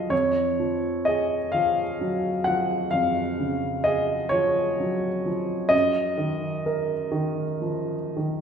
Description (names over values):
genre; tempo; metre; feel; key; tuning
classical, romantic nocturne for solo piano; 43 BPM (dotted quarters); 12/8; rubato; Db major; A4 = 440 Hz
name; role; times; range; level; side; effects
clear upright piano; solo; 0.0-8.4 s; F2 to Gb5; -22 LUFS; equal; none
room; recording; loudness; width
wet recital hall reverb, RT60 1.4 s; recorded in a church or concert hall; -22 LUFS; side -7 dB against mid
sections
0.0-8.4 A section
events
none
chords
0.1 Db/F; 5.7 Ebm/Gb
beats
| 0.12 1.54 2.93 4.33 | 5.73 7.12